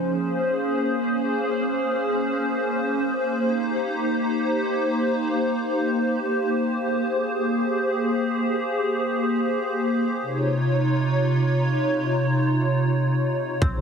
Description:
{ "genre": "hip hop, atmospheric cloud-rap", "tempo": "free time", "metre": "none", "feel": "none", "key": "Bb dorian", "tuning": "A4 = 440 Hz", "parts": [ { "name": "hollow soft pad", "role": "sustained chords", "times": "0.0-13.8 s", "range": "C3 to Db5", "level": "-21 LUFS", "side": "equal", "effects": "ensemble chorus, sidechain pumping" }, { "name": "glassy wavetable pluck", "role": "arpeggios", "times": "13.6-13.8 s", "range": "C4", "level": "-36 LUFS", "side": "equal", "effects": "chorus, low-pass filter, digital delay" }, { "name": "clean 808-style bass", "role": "bass", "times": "13.6-13.8 s", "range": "Bb1", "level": "-23 LUFS", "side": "equal", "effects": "none" }, { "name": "trap drum kit", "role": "drums", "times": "13.6-13.7 s", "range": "hi-hat, kick drum", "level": "-24 LUFS", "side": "equal", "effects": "overdrive" } ], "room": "light reverb", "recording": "heavily compressed radio sound, multiband compression", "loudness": "-21 LUFS", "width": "side -6 dB against mid", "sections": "0.0-13.8 A section", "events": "none", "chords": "0.0 Bbm9; 3.4 Cm7; 6.8 Abmaj9; 10.2 Dbmaj9" }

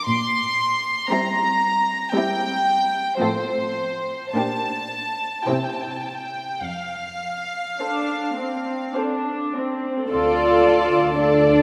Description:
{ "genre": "classical, slow romantic movement for string orchestra", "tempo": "50-58 BPM", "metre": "3/4", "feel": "rubato", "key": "F major", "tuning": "A4 = 440 Hz", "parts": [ { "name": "clear studio violin section", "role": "melody", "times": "0.0-11.6 s", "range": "C5 to C6", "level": "-26 LUFS", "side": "equal", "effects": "none" }, { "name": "dark studio cello section", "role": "bass", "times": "0.1-11.6 s", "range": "F2 to F4", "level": "-25 LUFS", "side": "equal", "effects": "none" }, { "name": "dark studio violin section", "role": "second line", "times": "1.1-11.6 s", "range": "E4 to D5", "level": "-27 LUFS", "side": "equal", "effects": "none" }, { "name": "warm studio viola section", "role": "accompaniment", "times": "1.1-11.6 s", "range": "F3 to A4", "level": "-28 LUFS", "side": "equal", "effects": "none" }, { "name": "warm studio double bass section", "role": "bass", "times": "10.1-11.6 s", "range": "D2", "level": "-30 LUFS", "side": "equal", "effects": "none" } ], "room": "wet concert hall reverb, RT60 2.6 s", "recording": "none", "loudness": "-22 LUFS", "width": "mono", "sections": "0.0-10.1 A section; 10.1-11.6 B section", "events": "none", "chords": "0.1 C7/Bb; 3.2 F/A; 4.4 Gm/Bb; 5.5 C; 6.6 F; 10.1 Dm" }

